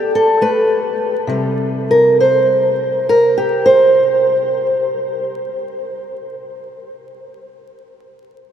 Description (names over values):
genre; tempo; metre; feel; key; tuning
acoustic country blues, solo or duo; 68 BPM; 4/4; swing 64% on 8ths; unclear; A4 = 440 Hz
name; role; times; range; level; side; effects
fingerpicked old ladder-braced acoustic guitar; solo; 0.0-6.3 s; C3 to D5; -13 LUFS; equal; none
room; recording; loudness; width
wet huge ambient reverb, RT60 8.1 s; in a vast, echoing space, vinyl crackle; -12 LUFS; side -9 dB against mid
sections
0.0-1.3 A section; 1.3-4.8 B section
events
slowing down 0.0-1.3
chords
0.0 G (rootless); 1.3 C5